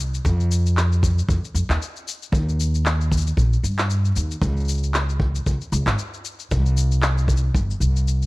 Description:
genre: folktronica.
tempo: 115 BPM.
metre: 4/4.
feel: swing 56% on 16ths.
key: unclear.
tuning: A4 = 440 Hz.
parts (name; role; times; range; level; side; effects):
upright bass; bass; 0.0-8.3 s; G1 to G2; -19 LUFS; equal; none.
electronic shaker and handclaps; drums; 0.0-8.3 s; none; -27 LUFS; left 1 dB; none.
kick drum; drums; 0.2-7.7 s; none; -23 LUFS; equal; none.
room: studio ambience.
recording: vinyl crackle.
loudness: -19 LUFS.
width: side -22 dB against mid.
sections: 0.0-8.3 A section.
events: none.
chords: none.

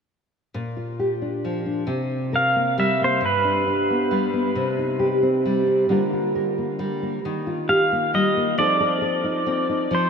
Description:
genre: folk.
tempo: 45 BPM (dotted quarters).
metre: 6/8.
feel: straight.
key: Bb major.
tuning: A4 = 440 Hz.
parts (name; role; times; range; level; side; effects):
nylon-string guitar; accompaniment; 0.5-10.1 s; G2 to Bb4; -22 LUFS; left 1 dB; wide subtle chorus.
pedal steel guitar; melody; 2.4-10.1 s; B4 to F5; -22 LUFS; right 1 dB; wide subtle chorus, diffuse ambient delay.
room: wet huge ambient reverb, RT60 5.0 s.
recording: dreamy mix soaked in reverb.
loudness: -19 LUFS.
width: side -6 dB against mid.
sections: 0.5-10.1 A section.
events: none.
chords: 0.5 Bb6; 1.9 C5; 3.2 G; 4.6 Cm; 5.9 Gm7/D; 7.2 Ebadd9; 8.6 F7.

